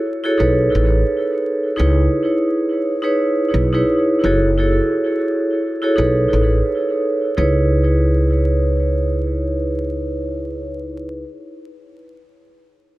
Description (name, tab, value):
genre	hip hop, boom-bap hip-hop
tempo	86 BPM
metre	4/4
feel	swing 59% on 16ths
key	C# minor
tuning	A4 = 440 Hz
part	vibraphone with medium hard mallets	accompaniment	0.2-11.2 s	D#4 to C#5	-17 LUFS	right 1 dB	cassette tape, high-pass filter, low-pass filter, analog delay
part	upright bass	bass	0.4-11.2 s	F#1 to C#2	-18 LUFS	equal	none
room	moderate spring reverb, RT60 1.2 s, studio reverb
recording	echo-heavy mix, vinyl crackle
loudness	-15 LUFS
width	side -17 dB against mid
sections	0.0-7.4 A section; 7.4-10.2 B section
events	none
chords	0.4 B13; 1.8 C#m9; 4.2 F#m9; 6.0 B13; 7.4 C#m9